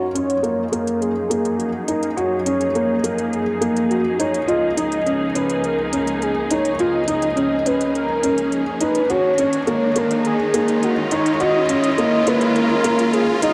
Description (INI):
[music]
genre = piano and strings electronica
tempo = 104 BPM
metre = 4/4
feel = straight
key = F# major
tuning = A4 = 439 Hz
[part]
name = warm velvety synth lead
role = melody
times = 0.0-13.5 s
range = F#4 to D#5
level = -24 LUFS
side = equal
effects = chorus, cassette tape, delay
[part]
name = rich studio string section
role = sustained chords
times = 0.0-13.5 s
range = C#2 to G#4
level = -27 LUFS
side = equal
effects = low-pass filter
[part]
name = felt-muted upright piano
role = riff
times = 0.0-13.5 s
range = A#3 to F#4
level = -23 LUFS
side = equal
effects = delay
[part]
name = riser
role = sound effects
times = 4.4-13.5 s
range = none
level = -32 LUFS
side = equal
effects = none
[part]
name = electronic hi-hat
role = drums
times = 0.2-13.5 s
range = none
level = -32 LUFS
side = equal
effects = none
[sound]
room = moderate lush hall reverb, RT60 2.1 s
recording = none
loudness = -19 LUFS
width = mono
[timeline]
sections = 0.0-13.5 A section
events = build-up 0.0-13.5; filter sweep on string section 0.0-13.5; riser 4.4-13.5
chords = 0.0 F#; 4.5 C#add9; 9.1 D#7(no3)